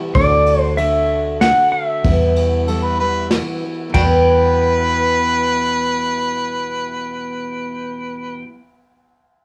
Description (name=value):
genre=honky-tonk and classic country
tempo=95 BPM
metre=3/4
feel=straight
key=E minor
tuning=A4 = 440 Hz
part: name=picked steel-string acoustic guitar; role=accompaniment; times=0.0-8.6 s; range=E2 to G4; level=-23 LUFS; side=equal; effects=plate reverb
part: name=pedal steel guitar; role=melody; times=0.1-8.4 s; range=D5 to G5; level=-21 LUFS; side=equal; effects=cassette tape, plate reverb
part: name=soft brush drum kit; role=drums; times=0.1-4.1 s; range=kick drum, ride cymbal, snare drum, toms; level=-25 LUFS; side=equal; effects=cassette tape
part: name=vintage muted fingered electric bass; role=bass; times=0.2-8.4 s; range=D2 to E2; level=-23 LUFS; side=equal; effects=none
part: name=warm harmonica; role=second line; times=2.7-8.4 s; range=D4 to B4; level=-22 LUFS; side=equal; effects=plate reverb
room=moderate small room reverb, RT60 0.6 s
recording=home recording on cassette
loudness=-17 LUFS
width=mono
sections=0.1-3.9 A section; 3.9-7.7 B section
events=none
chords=0.1 D; 2.0 Em